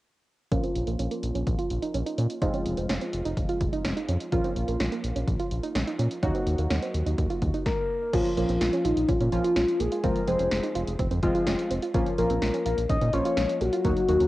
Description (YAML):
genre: synth-pop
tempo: 126 BPM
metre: 4/4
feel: straight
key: Bb minor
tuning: A4 = 440 Hz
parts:
  - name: warm analog keys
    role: accompaniment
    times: 0.5-14.3 s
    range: F3 to Ab4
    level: -31 LUFS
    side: equal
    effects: chorus, low-pass filter, cassette tape
  - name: soft round pluck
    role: arpeggios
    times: 0.5-14.3 s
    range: Bb3 to F4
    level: -33 LUFS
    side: right 4 dB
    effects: chorus, low-pass filter, cassette tape, analog delay
  - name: round analog bass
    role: bass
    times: 0.5-14.3 s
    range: F1 to Bb2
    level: -28 LUFS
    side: equal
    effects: none
  - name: punchy analog drum machine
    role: drums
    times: 0.5-14.3 s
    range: crash cymbal, hi-hat, kick drum, snare drum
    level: -30 LUFS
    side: equal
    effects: cassette tape
  - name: soft octave-layered synth lead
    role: melody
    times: 7.7-14.3 s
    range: Eb4 to Eb5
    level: -26 LUFS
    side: left 2 dB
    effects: chorus, phaser, cassette tape
room: moderate spring reverb, RT60 1.9 s, digital ambience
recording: home recording on cassette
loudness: -24 LUFS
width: side -16 dB against mid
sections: 0.5-8.1 A section; 8.1-14.3 B section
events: filter sweep 0.5-8.1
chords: 0.5 Bbm; 2.4 Fm; 4.3 Bbm; 6.2 Ebm; 8.1 Bbm; 10.0 Fm; 11.9 Bbm